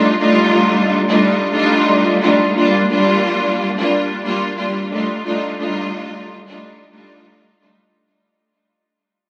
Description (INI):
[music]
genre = hip hop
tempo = 89 BPM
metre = 4/4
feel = swing 63% on 16ths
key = unclear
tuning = A4 = 440 Hz
[part]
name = clear studio string section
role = solo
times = 0.0-7.9 s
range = G3 to F4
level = -16 LUFS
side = equal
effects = high-pass filter, low-pass filter, tape echo
[sound]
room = wet small room reverb, RT60 0.5 s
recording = recorded on a phone in the room, club reverb, vinyl crackle, compression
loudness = -16 LUFS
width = mono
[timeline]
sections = 0.0-2.5 A section; 2.5-7.9 B section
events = fade-out 2.5-7.9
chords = 0.0 F13; 2.5 Gm7; 4.9 F13